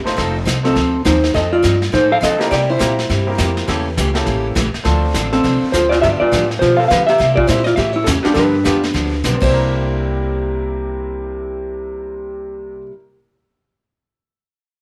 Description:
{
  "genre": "country, western swing",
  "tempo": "205 BPM",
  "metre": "4/4",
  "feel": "swing 61% on 8ths",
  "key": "C mixolydian",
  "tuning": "A4 = 441 Hz",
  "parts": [
    { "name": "bright upright piano", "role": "accompaniment", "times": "0.0-12.9 s", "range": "C3 to C5", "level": "-27 LUFS", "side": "equal", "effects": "none" },
    { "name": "upright bass", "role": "bass", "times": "0.0-12.8 s", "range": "F1 to D3", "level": "-23 LUFS", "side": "equal", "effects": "none" },
    { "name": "vintage brush drum kit", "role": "drums", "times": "0.1-9.5 s", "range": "brushed snare drum, crash cymbal, hi-hat, kick drum, snare drum", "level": "-25 LUFS", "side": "equal", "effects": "none" },
    { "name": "picked steel-string acoustic guitar", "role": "accompaniment", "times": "0.2-12.9 s", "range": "C3 to A4", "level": "-26 LUFS", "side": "equal", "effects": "none" },
    { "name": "hollow-body jazz guitar", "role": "melody", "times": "0.7-3.3, 5.3-12.8 s", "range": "C4 to F5", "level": "-17 LUFS", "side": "equal", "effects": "none" }
  ],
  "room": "moderate plate reverb, RT60 1.1 s, small room ambience",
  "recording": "none",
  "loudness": "-16 LUFS",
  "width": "mono",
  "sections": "0.0-9.5 A section; 9.5-11.9 B section",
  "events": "none",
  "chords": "0.2 F7; 2.5 C7; 3.7 A7b9; 4.9 Dm7; 6.0 G7; 7.2 C7; 7.8 A7; 8.4 G7; 9.4 C9",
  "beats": "| 0.17 0.47 0.76 1.05 | 1.35 1.64 1.93 2.22 | 2.52 2.81 3.10 3.39 | 3.69 3.98 4.27 4.56 | 4.86 5.15 5.44 5.73 | 6.03 6.32 6.61 6.91 | 7.20 7.49 7.78 8.07 | 8.37 8.66 8.95 9.24 | 9.54 9.83 10.12 10.41 | 10.71 11.00 11.29 11.59"
}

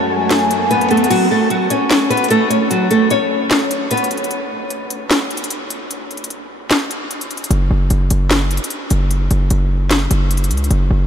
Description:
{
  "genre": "hip hop, trap",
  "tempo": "150 BPM",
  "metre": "4/4",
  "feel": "half-time",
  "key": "F# minor",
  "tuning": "A4 = 441 Hz",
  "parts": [
    { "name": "nylon-string guitar", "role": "melody", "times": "0.0-4.1 s", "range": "F#3 to C#5", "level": "-16 LUFS", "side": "equal", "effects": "tape echo" },
    { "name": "warm velvety synth lead", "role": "second line", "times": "0.0-1.1 s", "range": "F#5 to G#5", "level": "-23 LUFS", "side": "equal", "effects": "chorus, tape echo" },
    { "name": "hand-pumped harmonium", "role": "sustained chords", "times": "0.0-1.1 s", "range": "F#2 to C#4", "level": "-28 LUFS", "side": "equal", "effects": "none" },
    { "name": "riser", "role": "sound effects", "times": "0.0-1.1 s", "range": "none", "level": "-24 LUFS", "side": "left 1 dB", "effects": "none" },
    { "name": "trap drum kit", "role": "drums", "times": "0.3-10.8 s", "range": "crash cymbal, handclaps, hi-hat, snare drum", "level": "-20 LUFS", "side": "left 1 dB", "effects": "none" },
    { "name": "hard-hitting 808-style bass", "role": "bass", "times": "7.5-11.1 s", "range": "F#1 to C#2", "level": "-14 LUFS", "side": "equal", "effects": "none" }
  ],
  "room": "wet huge ambient reverb, RT60 9.2 s",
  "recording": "dreamy mix soaked in reverb",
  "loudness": "-14 LUFS",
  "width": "side -8 dB against mid",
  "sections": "0.0-1.1 A section; 1.1-11.1 B section",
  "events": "riser 0.0-1.1; break 1.1-7.5",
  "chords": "0.0 F#m; 4.3 N.C.; 7.5 F#5",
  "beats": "0.31 0.71 | 1.11 1.51 1.91 2.31 | 2.71 3.11 3.51 3.91 | 4.31 4.71 5.11 5.51 | 5.91 6.31 6.71 7.11 | 7.51 7.91 8.31 8.71 | 9.11 9.51 9.91 10.31 | 10.71"
}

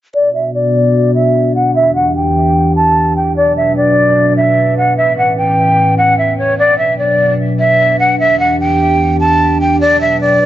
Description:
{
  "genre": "hip hop",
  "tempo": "149 BPM",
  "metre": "4/4",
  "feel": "half-time",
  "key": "B minor",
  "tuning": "A4 = 438 Hz",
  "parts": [
    { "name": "breathy jazz flute", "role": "melody", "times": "0.1-10.5 s", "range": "C#5 to A5", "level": "-11 LUFS", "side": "equal", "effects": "low-pass filter, digital delay" },
    { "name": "dark analog pad", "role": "sustained chords", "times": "0.1-10.5 s", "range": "E2 to B4", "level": "-14 LUFS", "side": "equal", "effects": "lush chorus, low-pass filter" }
  ],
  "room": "moderate recital hall reverb, RT60 1.2 s, small room ambience",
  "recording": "nothing above 7.7 kHz",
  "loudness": "-9 LUFS",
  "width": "side -13 dB against mid",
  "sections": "0.1-10.5 A section",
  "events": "filter sweep 0.1-10.5",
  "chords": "0.1 Bm; 1.8 Em7; 3.4 Bm; 5.0 Aadd9; 6.6 Bm; 8.2 Em7; 9.8 Bm",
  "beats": "| 0.14 0.54 0.95 1.35 | 1.75 2.15 2.56 2.96 | 3.36 3.77 4.17 4.57 | 4.97 5.38 5.78 6.18 | 6.58 6.99 7.39 7.79 | 8.20 8.60 9.00 9.40 | 9.81 10.21"
}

